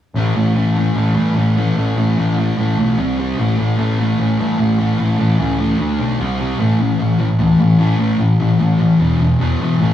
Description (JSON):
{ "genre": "rock", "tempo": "149 BPM", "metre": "4/4", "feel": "straight", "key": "unclear", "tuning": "A4 = 441 Hz", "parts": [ { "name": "growling picked electric bass", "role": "bass", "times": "0.1-9.9 s", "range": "E1 to G2", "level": "-18 LUFS", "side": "left 1 dB", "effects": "overdrive" }, { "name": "thick fuzz guitar", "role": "riff", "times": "0.2-9.9 s", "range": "E2 to D4", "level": "-15 LUFS", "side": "equal", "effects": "distortion" } ], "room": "moderate studio reverb, RT60 0.6 s", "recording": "rough rehearsal-room recording, tube saturation, cassette tape", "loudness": "-14 LUFS", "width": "side -11 dB against mid", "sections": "0.2-6.6 A section; 6.6-9.9 B section", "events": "none", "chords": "0.2 A5; 3.0 C5; 3.4 A; 5.8 D5; 6.2 C5; 6.6 A5; 9.0 E5", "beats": "| 0.16 0.56 0.96 1.37 | 1.77 2.17 2.58 2.98 | 3.38 3.78 4.19 4.59 | 4.99 5.39 5.79 6.20 | 6.60 7.00 7.40 7.80 | 8.20 8.61 9.01 9.41 | 9.81" }